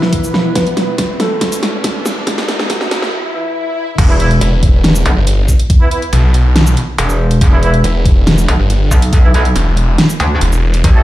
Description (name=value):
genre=heavy wobble dubstep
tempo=140 BPM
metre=4/4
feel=half-time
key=E minor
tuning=A4 = 440 Hz
part: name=dark grand piano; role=melody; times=0.0-3.9 s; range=E3 to B4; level=-21 LUFS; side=equal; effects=ping-pong delay
part: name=lush unison pad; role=sustained chords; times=0.0-3.1 s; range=B2 to B4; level=-25 LUFS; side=right 1 dB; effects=chorus, sidechain pumping
part: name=dubstep drum kit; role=drums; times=0.0-10.9 s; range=crash cymbal, hi-hat, shaker, snare drum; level=-16 LUFS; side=equal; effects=overdrive
part: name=riser, swell and impact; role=sound effects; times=0.0-5.7 s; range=none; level=-23 LUFS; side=equal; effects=none
part: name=electronic kick drum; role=drums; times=0.1-10.9 s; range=none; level=-10 LUFS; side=equal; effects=overdrive
part: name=metallic wobble bass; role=bass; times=4.0-11.0 s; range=E1 to D2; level=-11 LUFS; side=equal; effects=distortion, chorus, overdrive
part: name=dark brass ensemble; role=stabs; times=4.1-11.0 s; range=E3 to A4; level=-21 LUFS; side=right 2 dB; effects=vintage 12-bit sampler grit, ping-pong delay
part: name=snarling distorted saw bass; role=bass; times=4.4-10.8 s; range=E1 to B1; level=-12 LUFS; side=equal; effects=distortion, overdrive
room=light reverb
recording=played on a big sound system in a bare room, large studio reverb, high-pass filter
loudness=-10 LUFS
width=side -15 dB against mid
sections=0.0-4.0 A section; 4.0-11.0 B section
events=build-up 0.0-4.0; drum fill 0.0-3.1; riser 0.0-3.1; filter sweep 0.0-4.0; break 3.1-4.0; swell 3.1-4.0; drop 4.0-11.0; impact 4.0-5.7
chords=0.0 E5; 4.0 Em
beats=0.13 | 0.56 0.98 1.41 1.84 | 2.27 2.70 3.13 3.56 | 3.98 4.41 4.84 5.27 | 5.70 6.13 6.56 6.98 | 7.41 7.84 8.27 8.70 | 9.13 9.56 9.98 10.41 | 10.84